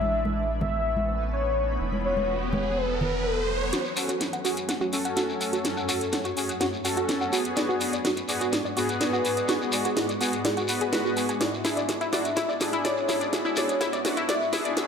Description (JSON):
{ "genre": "progressive house", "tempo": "125 BPM", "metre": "4/4", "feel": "straight", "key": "F# minor", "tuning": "A4 = 440 Hz", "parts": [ { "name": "warm velvety synth lead", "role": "melody", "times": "0.0-14.9 s", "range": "G#4 to E5", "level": "-31 LUFS", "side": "left 2 dB", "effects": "chorus, digital delay" }, { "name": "shimmering ambient pad", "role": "sustained chords", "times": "0.0-14.9 s", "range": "F#2 to D5", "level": "-34 LUFS", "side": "right 1 dB", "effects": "chorus, built-in reverb" }, { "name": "round analog bass", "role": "bass", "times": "0.0-3.7 s", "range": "E1 to A1", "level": "-31 LUFS", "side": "right 1 dB", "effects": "none" }, { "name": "congas", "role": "percussion", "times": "0.0-3.1 s", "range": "none", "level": "-32 LUFS", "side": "equal", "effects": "none" }, { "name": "riser", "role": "sound effects", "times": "1.1-3.7 s", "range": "none", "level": "-34 LUFS", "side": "right 2 dB", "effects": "none" }, { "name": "analog pluck", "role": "arpeggios", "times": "3.7-14.7 s", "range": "E4 to G#5", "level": "-30 LUFS", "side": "equal", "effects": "chorus, tape echo" }, { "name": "house drum kit", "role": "drums", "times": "3.7-14.9 s", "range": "hi-hat, snare drum", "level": "-30 LUFS", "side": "right 1 dB", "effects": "overdrive" }, { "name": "shekere", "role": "percussion", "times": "3.7-14.9 s", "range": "none", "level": "-34 LUFS", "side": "left 2 dB", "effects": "none" }, { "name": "soft supersaw", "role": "stabs", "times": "4.0-14.9 s", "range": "B3 to B4", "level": "-30 LUFS", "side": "left 1 dB", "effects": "low-pass filter, tape echo" } ], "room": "moderate digital room reverb, RT60 1.2 s", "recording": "high-pass filter", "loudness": "-24 LUFS", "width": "side -6 dB against mid", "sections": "0.0-3.7 A section; 3.7-14.9 B section", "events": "riser 1.1-3.7; build-up 3.7-14.9; drum fill 3.7-14.9; filter sweep on synth pluck 3.7-14.9; filter sweep on supersaw synth 3.7-14.9; filter sweep on ambient pad 3.7-14.9; filter sweep on soft synth lead 3.7-14.9", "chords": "0.0 Asus2; 1.8 Esus2; 3.7 F#m; 7.6 G#m7b5; 11.4 E7/G#" }